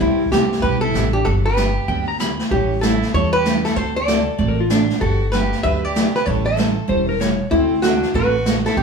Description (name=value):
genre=country, western swing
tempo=192 BPM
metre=4/4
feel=swing 63% on 8ths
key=G major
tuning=A4 = 440 Hz
part: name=archtop guitar, miked and amplified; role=melody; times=0.0-8.8 s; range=E4 to E5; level=-20 LUFS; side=left 1 dB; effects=none
part: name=rich fiddle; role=second line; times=0.0-8.8 s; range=C4 to B4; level=-28 LUFS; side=right 3 dB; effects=none
part: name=picked steel-string acoustic guitar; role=accompaniment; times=0.0-8.8 s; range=C3 to A4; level=-23 LUFS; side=right 5 dB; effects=none
part: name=upright bass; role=bass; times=0.0-8.8 s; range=E1 to E2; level=-23 LUFS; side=equal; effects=none
part: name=jazz brush drum kit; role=drums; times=0.0-8.8 s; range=brushed snare drum, hi-hat, kick drum, snare drum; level=-23 LUFS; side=left 1 dB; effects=none
part: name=clean lap steel guitar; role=second line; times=1.9-7.5 s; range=D4 to B5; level=-24 LUFS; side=left 1 dB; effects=none
room=wet studio reverb, RT60 0.8 s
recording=band playing live in one room, studio ambience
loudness=-16 LUFS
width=side -5 dB against mid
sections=0.0-8.8 A section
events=none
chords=0.0 Cmaj7; 1.3 Gmaj7; 2.5 A7; 3.8 D7; 5.0 Gmaj7; 6.3 A7; 7.5 D7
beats=| 0.01 0.32 0.63 0.95 | 1.26 1.57 1.89 2.20 | 2.51 2.83 3.14 3.45 | 3.76 4.08 4.39 4.70 | 5.01 5.33 5.64 5.95 | 6.26 6.58 6.89 7.20 | 7.52 7.83 8.14 8.45 | 8.77